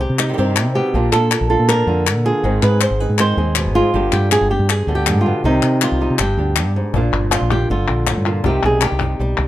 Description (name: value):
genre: flamenco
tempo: 160 BPM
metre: 4/4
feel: straight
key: unclear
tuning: A4 = 440 Hz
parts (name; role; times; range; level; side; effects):
- flamenco guitar; melody; 0.0-9.5 s; G2 to C5; -18 LUFS; equal; none
- flamenco guitar; stabs; 0.0-9.2 s; C3 to Ab4; -25 LUFS; right 4 dB; none
- woody fretless electric bass; bass; 0.0-9.5 s; G1 to C3; -18 LUFS; equal; none
- palmas hand claps; percussion; 0.2-9.5 s; none; -21 LUFS; left 8 dB; none
- cajon; percussion; 6.9-9.2 s; none; -23 LUFS; left 4 dB; none
room: light reverb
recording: close, detailed microphones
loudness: -14 LUFS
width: side -13 dB against mid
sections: 0.0-7.0 A section; 7.0-9.5 B section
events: nylon-string guitar solo 7.0-9.5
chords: 0.0 Cm; 0.9 Bb; 2.4 Ab; 3.9 G; 5.4 Cm; 6.2 G; 7.0 Bb; 8.5 Cm